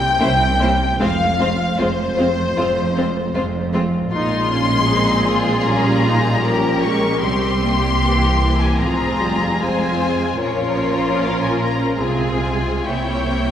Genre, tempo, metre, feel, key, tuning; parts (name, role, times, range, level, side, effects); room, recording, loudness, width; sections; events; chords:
classical, slow romantic movement for string orchestra; 76 BPM; 4/4; rubato; F minor; A4 = 440 Hz
rich symphonic violin section; melody; 0.0-13.5 s; C5 to Db6; -22 LUFS; left 3 dB
rich symphonic double bass section; bass; 0.0-13.5 s; F1 to C2; -24 LUFS; right 1 dB
warm symphonic cello section; bass; 0.0-13.5 s; F2 to C3; -24 LUFS; right 2 dB
clear symphonic violin section; second line; 0.2-13.5 s; Eb4 to Db5; -23 LUFS; left 2 dB
clear symphonic viola section; accompaniment; 0.2-13.5 s; E3 to Eb4; -22 LUFS; right 1 dB
wet concert hall reverb, RT60 1.9 s; heard from further back in the room; -16 LUFS; side -9 dB against mid
0.0-13.5 A section
0.0 C7(no3); 1.0 Fm; 4.1 Bbm7; 7.2 C7; 8.8 Fm; 10.4 Bbm; 12.0 Fm/C; 12.9 C7b9